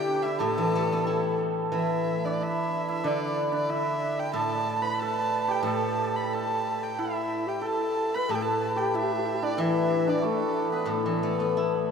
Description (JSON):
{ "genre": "chinese traditional, Chinese chamber ensemble", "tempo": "92 BPM", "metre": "2/4", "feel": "rubato", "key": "A shang mode", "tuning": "A4 = 442 Hz", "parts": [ { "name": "warm erhu", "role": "melody", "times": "0.0-11.9 s", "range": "A4 to B5", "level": "-31 LUFS", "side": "right 1 dB", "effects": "none" }, { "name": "hammered dulcimer", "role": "second line", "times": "0.0-11.9 s", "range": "A3 to D5", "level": "-30 LUFS", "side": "right 4 dB", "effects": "none" }, { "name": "mellow xiao", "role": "second line", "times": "0.0-1.4, 7.0-11.9 s", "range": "D4 to B4", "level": "-31 LUFS", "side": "left 2 dB", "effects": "none" }, { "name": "steel-string zither", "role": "accompaniment", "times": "0.0-11.9 s", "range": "A2 to E4", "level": "-30 LUFS", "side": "left 3 dB", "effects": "none" } ], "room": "wet cathedral reverb, RT60 5.4 s", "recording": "in a vast, echoing space", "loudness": "-25 LUFS", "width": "side -6 dB against mid", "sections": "0.0-1.7 A section; 1.7-11.9 B section", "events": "none", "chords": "none" }